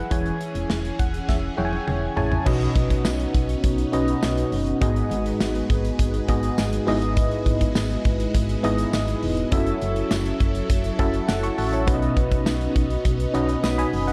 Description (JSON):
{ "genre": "1980s-style pop", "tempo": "102 BPM", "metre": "4/4", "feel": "straight", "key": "unclear", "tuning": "A4 = 441 Hz", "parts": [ { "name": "FM electric piano with tremolo", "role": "accompaniment", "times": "0.0-14.1 s", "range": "G#2 to D#6", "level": "-27 LUFS", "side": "equal", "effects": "shimmer reverb" }, { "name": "string machine, violas", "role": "sustained chords", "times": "0.0-14.1 s", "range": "E3 to D#5", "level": "-34 LUFS", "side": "equal", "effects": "ensemble chorus, shimmer reverb" }, { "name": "solid FM bass", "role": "bass", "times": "0.0-14.1 s", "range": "E1 to B1", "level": "-29 LUFS", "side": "equal", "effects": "none" }, { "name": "modern studio drum kit", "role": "drums", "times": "0.1-14.1 s", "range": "crash cymbal, hi-hat, kick drum, snare drum, tambourine, toms", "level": "-27 LUFS", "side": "equal", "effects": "none" }, { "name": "mellow synth brass", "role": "stabs", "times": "2.5-14.1 s", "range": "B3 to E5", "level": "-35 LUFS", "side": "equal", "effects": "chorus, shimmer reverb" } ], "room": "light reverb, small room ambience", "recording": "dark, warm production", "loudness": "-23 LUFS", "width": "mono", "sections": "0.0-2.5 A section; 2.5-14.1 B section", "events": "FM electric piano fill 0.7-2.5, 10.7-11.9; drum fill 1.3-2.5", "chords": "0.1 C#m/E; 2.5 Badd9; 4.8 G#m7; 6.9 Emaj7/G#; 9.5 F#m7; 11.9 Badd9" }